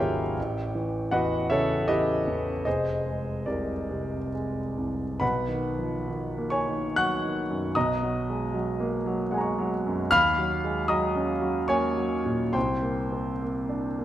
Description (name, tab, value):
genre	classical, impressionist solo piano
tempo	65-80 BPM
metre	3/4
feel	rubato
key	unclear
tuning	A4 = 440 Hz
part	clear concert grand piano	solo	0.0-14.0 s	F1 to F#6	-25 LUFS	equal	none
room	moderate scoring stage reverb, RT60 1.5 s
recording	none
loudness	-25 LUFS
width	side -12 dB against mid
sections	0.0-5.2 A section; 5.2-14.0 B section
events	none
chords	0.4 A9; 2.7 Fm6; 5.2 Bmaj9; 7.8 G#m11/B; 10.1 D#m7; 12.5 Csus2